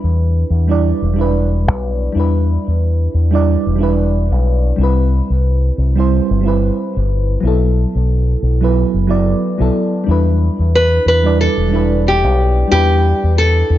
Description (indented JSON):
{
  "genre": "sunset chillout",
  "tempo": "91 BPM",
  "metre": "4/4",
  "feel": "swing 57% on 16ths",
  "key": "E minor",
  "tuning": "A4 = 440 Hz",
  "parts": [
    { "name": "mellow FM electric piano", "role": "accompaniment", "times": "0.0-13.8 s", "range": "F#3 to D5", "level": "-18 LUFS", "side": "moving between left 4 dB and right 7 dB", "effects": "chorus, auto-pan, tape echo" },
    { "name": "fingered electric bass with an envelope filter", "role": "bass", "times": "0.0-13.8 s", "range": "E1 to E2", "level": "-14 LUFS", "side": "left 1 dB", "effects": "none" },
    { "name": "nylon-string guitar", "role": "melody", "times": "10.8-13.8 s", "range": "G4 to B4", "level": "-15 LUFS", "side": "equal", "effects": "tape echo" }
  ],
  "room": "light reverb, small room ambience",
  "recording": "nothing above 7.6 kHz",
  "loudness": "-12 LUFS",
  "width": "side -13 dB against mid",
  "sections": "0.0-13.8 A section",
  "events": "none",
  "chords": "0.0 Em7; 4.8 Cmaj7; 7.4 B7sus4; 10.1 Em7",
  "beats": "0.18 0.84 1.50 | 2.16 2.82 3.48 4.14 | 4.80 5.46 6.12 6.78 | 7.44 8.10 8.76 9.41 | 10.07 10.73 11.39 12.05 | 12.71 13.37"
}